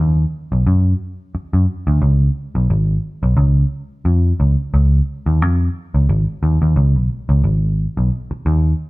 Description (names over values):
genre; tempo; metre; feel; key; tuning
funk; 88 BPM; 4/4; swing 56% on 16ths; unclear; A4 = 440 Hz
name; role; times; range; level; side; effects
vintage muted picked electric bass; solo; 0.0-8.7 s; G#1 to F#2; -14 LUFS; equal; none
room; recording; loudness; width
moderate stone room reverb, RT60 1.2 s; band playing live in one room; -14 LUFS; side -21 dB against mid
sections
0.0-7.5 A section; 7.5-8.9 B section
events
none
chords
none